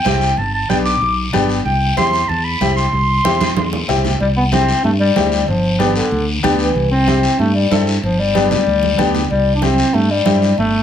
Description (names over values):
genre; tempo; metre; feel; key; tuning
latin, cumbia; 188 BPM; 4/4; straight; C major; A4 = 444 Hz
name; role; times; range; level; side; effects
breathy clarinet; second line; 0.0-3.8 s; G5 to D6; -18 LUFS; right 1 dB; none
bright upright piano; accompaniment; 0.0-10.5 s; B3 to A4; -19 LUFS; left 3 dB; none
fingered electric bass; bass; 0.1-10.8 s; G1 to G2; -18 LUFS; equal; none
congas; percussion; 0.1-10.7 s; none; -22 LUFS; right 5 dB; none
guiro; percussion; 0.1-10.8 s; none; -26 LUFS; left 3 dB; none
warm bass clarinet; melody; 4.2-10.8 s; D3 to D4; -16 LUFS; left 2 dB; none
room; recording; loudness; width
moderate studio ambience, RT60 0.5 s; small room reverb; -13 LUFS; side -9 dB against mid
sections
0.0-4.2 A section; 4.2-10.8 B section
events
clarinet solo 0.0-4.2; drum fill 3.2-4.2, 8.8-9.3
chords
0.4 G; 1.7 C; 5.5 G7; 6.8 C; 8.0 G; 9.3 C